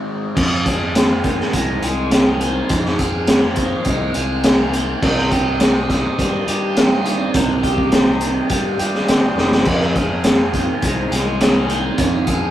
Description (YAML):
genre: psychedelic rock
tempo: 103 BPM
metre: 4/4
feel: straight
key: unclear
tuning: A4 = 440 Hz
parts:
  - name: overdriven electric guitar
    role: riff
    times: 0.0-12.5 s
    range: F2 to Ab4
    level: -22 LUFS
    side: right 1 dB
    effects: phaser
  - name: combo organ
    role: sustained chords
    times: 0.4-12.5 s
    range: C5 to Eb6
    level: -29 LUFS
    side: right 4 dB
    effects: none
  - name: fuzz fingered electric bass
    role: bass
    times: 0.4-12.5 s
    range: F1 to G2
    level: -23 LUFS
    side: equal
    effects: overdrive
  - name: crunchy breakbeat drum kit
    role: drums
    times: 0.4-12.4 s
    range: crash cymbal, hi-hat, kick drum, snare drum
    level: -17 LUFS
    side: equal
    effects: none
room: light reverb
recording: rough rehearsal-room recording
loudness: -15 LUFS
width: side -12 dB against mid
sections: 0.4-12.5 A section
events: break 0.0-0.4; drum fill 9.4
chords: 0.4 Fm7; 5.0 Cm; 9.7 Fm7